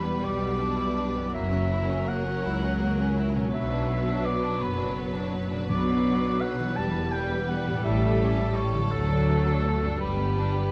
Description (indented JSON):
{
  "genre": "classical",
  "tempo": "55 BPM (dotted quarters)",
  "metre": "6/8",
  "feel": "rubato",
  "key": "B minor",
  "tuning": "A4 = 440 Hz",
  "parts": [
    { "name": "warm studio violin section", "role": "melody", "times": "0.0-10.7 s", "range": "G4 to B4", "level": "-41 LUFS", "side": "equal", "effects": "none" },
    { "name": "rich studio violin section", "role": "second line", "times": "0.0-10.7 s", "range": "G3 to E4", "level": "-37 LUFS", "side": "equal", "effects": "none" },
    { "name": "warm oboe", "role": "second line", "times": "0.0-10.7 s", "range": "A4 to A5", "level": "-34 LUFS", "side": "equal", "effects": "none" },
    { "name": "warm studio viola section", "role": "accompaniment", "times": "0.0-10.7 s", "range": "F#3 to G3", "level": "-35 LUFS", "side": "equal", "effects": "none" },
    { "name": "concert harp", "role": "arpeggios", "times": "0.0-10.7 s", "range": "F#2 to D5", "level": "-35 LUFS", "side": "equal", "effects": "none" },
    { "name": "rich studio double bass section", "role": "bass", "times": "0.0-10.7 s", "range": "E1 to D2", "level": "-33 LUFS", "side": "equal", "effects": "none" },
    { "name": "warm studio cello section", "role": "bass", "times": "0.0-10.7 s", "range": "C#2 to B2", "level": "-32 LUFS", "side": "equal", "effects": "none" },
    { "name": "timpani", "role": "percussion", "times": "5.7-6.7 s", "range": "B2", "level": "-38 LUFS", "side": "equal", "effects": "none" }
  ],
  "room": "moderate recital hall reverb, RT60 1.5 s",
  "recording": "close, detailed microphones, vinyl crackle",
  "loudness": "-26 LUFS",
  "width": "mono",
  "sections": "0.0-10.7 A section",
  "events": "none",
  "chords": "0.0 Em7; 1.3 F#7; 3.5 Bm; 6.8 Em; 7.9 A7; 8.9 D; 10.0 G"
}